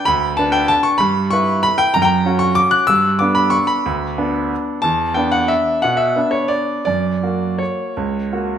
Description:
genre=classical, piano waltz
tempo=157-206 BPM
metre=3/4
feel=rubato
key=unclear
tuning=A4 = 436 Hz
part: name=clear grand piano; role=solo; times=0.0-8.6 s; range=C#2 to F#6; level=-15 LUFS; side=equal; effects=none
room=wet recital hall reverb, RT60 1.4 s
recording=none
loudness=-14 LUFS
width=side -8 dB against mid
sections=0.0-8.6 A section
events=none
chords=0.0 G; 1.0 Em/G; 2.0 F#; 2.9 G; 4.8 E5; 6.9 F#

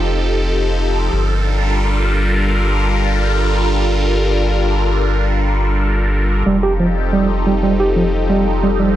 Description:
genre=IDM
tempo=90 BPM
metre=4/4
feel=straight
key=G minor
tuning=A4 = 440 Hz
part: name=phased analog pad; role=sustained chords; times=0.0-9.0 s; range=F3 to Bb4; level=-18 LUFS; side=equal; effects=phaser, chorus
part: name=round analog bass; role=bass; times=0.0-9.0 s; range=F1 to G1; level=-18 LUFS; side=equal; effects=none
part: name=tine electric piano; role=arpeggios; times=6.5-8.9 s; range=F3 to G4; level=-16 LUFS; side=right 3 dB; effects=medium tremolo, analog delay
room=light reverb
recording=dry, gritty hardware recording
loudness=-14 LUFS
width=side -12 dB against mid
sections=0.0-9.0 A section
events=none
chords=0.0 F7; 1.1 Gm7; 6.5 F7

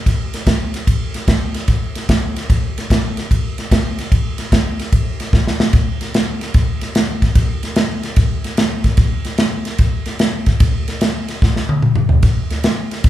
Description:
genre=blues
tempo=148 BPM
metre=4/4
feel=swing 67% on 8ths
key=none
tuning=none
part: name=natural country drum kit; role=drums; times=0.1-13.1 s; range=kick drum, ride cymbal, snare drum, toms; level=-14 LUFS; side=equal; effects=none
room=moderate large studio reverb, RT60 1.2 s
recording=band playing live in one room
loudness=-14 LUFS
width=side -13 dB against mid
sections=0.0-5.7 A section; 5.7-13.1 B section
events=drum fill 5.3-5.7, 11.4-12.2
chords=none

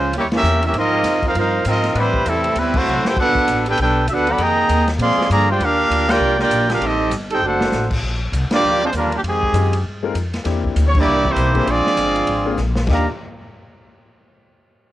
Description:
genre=jazz, big band swing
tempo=198 BPM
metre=4/4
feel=swing 61% on 8ths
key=Eb major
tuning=A4 = 440 Hz
part: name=clear trumpet section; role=melody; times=0.0-13.1 s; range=G3 to C6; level=-17 LUFS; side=equal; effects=cassette tape
part: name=muted trombone section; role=second line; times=0.0-13.1 s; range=Bb2 to G4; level=-24 LUFS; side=right 6 dB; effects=none
part: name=bright saxophone section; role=sustained chords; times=0.0-7.7 s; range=C3 to C5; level=-31 LUFS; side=left 2 dB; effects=none
part: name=upright bass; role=bass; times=0.0-13.1 s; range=F#1 to Bb2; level=-21 LUFS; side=left 1 dB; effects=tube saturation
part: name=swinging big-band drum kit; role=drums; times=0.1-13.0 s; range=crash cymbal, hi-hat, kick drum, ride cymbal, snare drum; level=-26 LUFS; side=left 1 dB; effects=cassette tape
part: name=warm baby grand piano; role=accompaniment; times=9.5-13.1 s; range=Ab3 to Bb4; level=-25 LUFS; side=left 7 dB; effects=none
room=light reverb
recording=home recording on cassette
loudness=-15 LUFS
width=side -14 dB against mid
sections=0.0-8.0 A section; 8.0-12.9 B section; 12.9-14.1 C section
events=band accent 0.3, 2.7, 6.0, 8.5, 10.9; drum fill 2.9-3.2, 7.4-7.7, 12.6-12.9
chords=0.1 Eb7b9; 0.7 Ab69; 1.9 Am11; 2.6 D9; 3.2 Gmaj9; 4.4 Fm11; 5.0 Bb13; 5.6 Ebmaj9; 6.8 Am7b5; 7.4 D7; 8.0 Gm7; 9.2 Fm9; 10.5 C9; 11.7 Bb9; 12.9 Ebmaj9

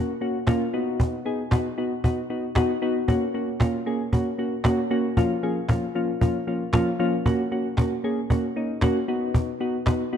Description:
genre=dance-pop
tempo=115 BPM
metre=4/4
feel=straight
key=F# major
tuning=A4 = 440 Hz
part: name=soft electric-piano-like synth keys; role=accompaniment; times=0.0-10.2 s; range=E#3 to G#4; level=-24 LUFS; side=left 1 dB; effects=chorus
part: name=cajon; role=drums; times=0.5-10.0 s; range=none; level=-24 LUFS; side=equal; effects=none
room=moderate lush hall reverb, RT60 2.1 s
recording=dark, warm production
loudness=-22 LUFS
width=side -8 dB against mid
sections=0.0-10.2 A section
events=none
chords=0.0 F#; 0.7 B; 3.1 F#; 5.2 A#m/E#; 7.3 F#; 9.1 B

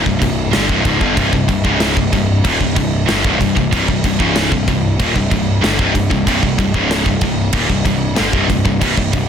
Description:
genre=heavy metal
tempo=94 BPM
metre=4/4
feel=straight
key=C minor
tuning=A4 = 438 Hz
part: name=heavy high-gain guitar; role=riff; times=0.0-9.3 s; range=C2 to D3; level=-18 LUFS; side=left 9 dB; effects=distortion
part: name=scooped high-gain guitar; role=riff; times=0.0-9.3 s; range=C2 to D3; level=-18 LUFS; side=right 8 dB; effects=distortion
part: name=fuzz picked electric bass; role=bass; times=0.0-9.3 s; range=C1 to G1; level=-21 LUFS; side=equal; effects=overdrive
part: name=big rock drum kit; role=drums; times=0.1-9.3 s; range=crash cymbal, kick drum, snare drum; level=-18 LUFS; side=equal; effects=none
room=small room ambience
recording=dense, heavily limited modern master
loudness=-13 LUFS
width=side -8 dB against mid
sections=0.0-9.3 A section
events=none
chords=0.0 Cm

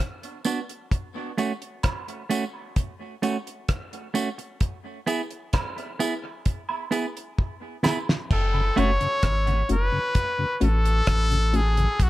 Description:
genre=dub reggae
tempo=65 BPM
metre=4/4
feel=straight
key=F# minor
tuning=A4 = 440 Hz
part: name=damped 70s drum kit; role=drums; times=0.2-12.1 s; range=crash cymbal, hi-hat, kick drum, rim click, snare drum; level=-26 LUFS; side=equal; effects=none
part: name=tambourine and woodblock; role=percussion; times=0.4-8.1 s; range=none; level=-35 LUFS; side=right 4 dB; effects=dub echo
part: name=clean electric guitar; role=accompaniment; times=0.5-8.9 s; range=A3 to G#4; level=-29 LUFS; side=right 3 dB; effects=low-pass filter, dub echo
part: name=bright trumpet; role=melody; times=8.3-12.1 s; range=F#4 to C#5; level=-25 LUFS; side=left 1 dB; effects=low-pass filter, dub echo
part: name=soft dub sub bass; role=bass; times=8.3-12.1 s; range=F#1 to B1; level=-22 LUFS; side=equal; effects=none
part: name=mellow tonewheel organ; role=accompaniment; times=8.5-11.8 s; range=F#2 to F#4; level=-29 LUFS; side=left 3 dB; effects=chorus vibrato, stopped rotary speaker, dub echo
room=light reverb, small room ambience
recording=none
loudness=-23 LUFS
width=side -16 dB against mid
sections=0.0-8.3 A section; 8.3-12.1 B section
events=break 0.0-8.3; filter sweep 0.0-8.3; drum fill 7.4-8.3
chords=0.0 Bm; 0.9 F#m; 4.6 E; 8.3 F#m

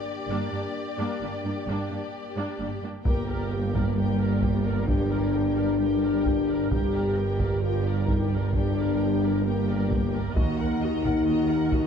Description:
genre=cinematic, epic orchestral film score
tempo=66 BPM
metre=4/4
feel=straight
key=G minor from 3.1 s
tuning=A4 = 443 Hz
part: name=rich studio violin section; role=melody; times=0.0-11.9 s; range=D5 to Bb5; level=-42 LUFS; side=left 4 dB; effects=none
part: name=warm symphonic violin section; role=second line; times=0.0-11.9 s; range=G4 to Gb5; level=-37 LUFS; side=left 3 dB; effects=none
part: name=dark French horn section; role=sustained chords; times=0.0-11.9 s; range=Bb3 to G4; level=-28 LUFS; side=left 5 dB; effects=none
part: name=mellow woodwind section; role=sustained chords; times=0.0-2.7 s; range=D4 to D5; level=-40 LUFS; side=left 2 dB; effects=none
part: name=warm symphonic viola section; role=accompaniment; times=0.3-11.9 s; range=Bb3 to Bb4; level=-36 LUFS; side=right 2 dB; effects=none
part: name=rich studio double bass section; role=bass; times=0.3-11.9 s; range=G1 to Eb2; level=-31 LUFS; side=right 4 dB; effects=none
part: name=warm symphonic cello section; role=bass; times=0.3-11.9 s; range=Eb2 to G2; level=-30 LUFS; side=right 2 dB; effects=none
part: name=clear tuba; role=bass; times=3.1-11.9 s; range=G1 to Eb2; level=-34 LUFS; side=right 4 dB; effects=none
part: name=taiko ensemble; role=drums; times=3.1-11.9 s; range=none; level=-29 LUFS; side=equal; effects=none
room=moderate concert hall reverb, RT60 2.4 s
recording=dark, warm production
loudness=-23 LUFS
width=side -7 dB against mid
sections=0.0-3.1 A section; 3.1-11.9 B section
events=none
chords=0.0 Gm; 10.4 Ebm

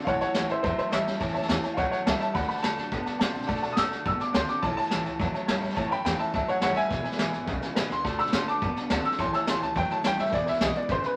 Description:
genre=rockabilly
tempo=211 BPM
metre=4/4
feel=straight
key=A major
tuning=A4 = 440 Hz
part: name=warm upright piano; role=melody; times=0.0-11.2 s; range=B4 to E6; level=-30 LUFS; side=equal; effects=none
part: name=honky-tonk upright piano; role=accompaniment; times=0.0-11.1 s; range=B4 to B5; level=-37 LUFS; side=equal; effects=none
part: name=picked steel-string acoustic guitar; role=accompaniment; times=0.0-11.2 s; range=E2 to F#4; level=-40 LUFS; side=equal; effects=none
part: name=electric guitar through a small old amp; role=riff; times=0.0-11.2 s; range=E2 to C4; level=-36 LUFS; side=equal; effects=none
part: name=vintage brush drum kit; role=drums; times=0.0-11.1 s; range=hi-hat, kick drum, snare drum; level=-32 LUFS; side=equal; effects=none
part: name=upright bass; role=bass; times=0.1-11.1 s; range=E1 to B2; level=-39 LUFS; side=equal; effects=none
room=moderate studio reverb, RT60 0.6 s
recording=vinyl crackle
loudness=-27 LUFS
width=mono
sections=0.0-11.2 A section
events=upright piano solo 0.0-11.2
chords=0.1 A; 2.4 D; 4.6 A; 6.9 E; 8.0 D; 9.2 A; 10.3 E

